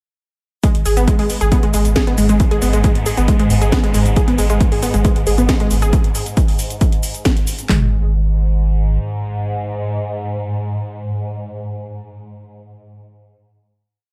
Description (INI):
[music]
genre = driving peak-time techno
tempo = 136 BPM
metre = 4/4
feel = straight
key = G# minor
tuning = A4 = 440 Hz
[part]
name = unison pluck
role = riff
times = 0.6-7.9 s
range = G#3 to G#4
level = -21 LUFS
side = equal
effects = overdrive, sidechain pumping, diffuse ambient delay
[part]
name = swarming drone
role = drone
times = 1.9-11.1 s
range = G#2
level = -26 LUFS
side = equal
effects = built-in reverb, subtle chorus, sidechain pumping
[part]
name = techno drum kit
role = drums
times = 0.6-7.8 s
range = handclaps, kick drum, toms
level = -18 LUFS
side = equal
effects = studio reverb
[part]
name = techno drum kit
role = drums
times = 0.6-7.7 s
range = hi-hat, shaker, snare drum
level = -26 LUFS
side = equal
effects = studio reverb
[part]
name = warm sub bass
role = bass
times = 0.7-9.0 s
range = G#1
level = -20 LUFS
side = equal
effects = overdrive, sidechain pumping, low-pass filter
[sound]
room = light reverb, digital ambience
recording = none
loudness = -16 LUFS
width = mono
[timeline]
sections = 0.6-7.7 drop; 7.7-11.2 final note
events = drop 0.6-7.7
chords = none